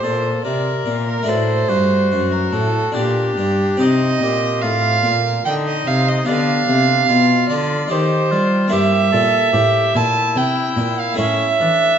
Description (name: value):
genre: classical, baroque-style sonata movement with continuo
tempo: 73 BPM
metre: 3/4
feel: straight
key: G minor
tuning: A4 = 440 Hz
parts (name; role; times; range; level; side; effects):
- clear oboe; melody; 0.0-12.0 s; C#4 to Bb4; -24 LUFS; left 8 dB; none
- warm violin; second line; 0.0-12.0 s; G4 to A5; -18 LUFS; right 5 dB; none
- harpsichord; accompaniment; 0.0-12.0 s; F#2 to G4; -22 LUFS; left 2 dB; none
- rich cello; bass; 0.0-12.0 s; F#2 to G3; -21 LUFS; equal; none
room: wet recital hall reverb, RT60 1.5 s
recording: nothing above 7.8 kHz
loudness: -14 LUFS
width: side -8 dB against mid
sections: 0.0-12.0 A section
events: none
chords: 0.0 Gm; 1.3 D7; 3.0 Gm/Bb; 3.8 Cm; 6.3 G7; 7.9 Cm/Eb; 8.7 Edim/G; 11.2 A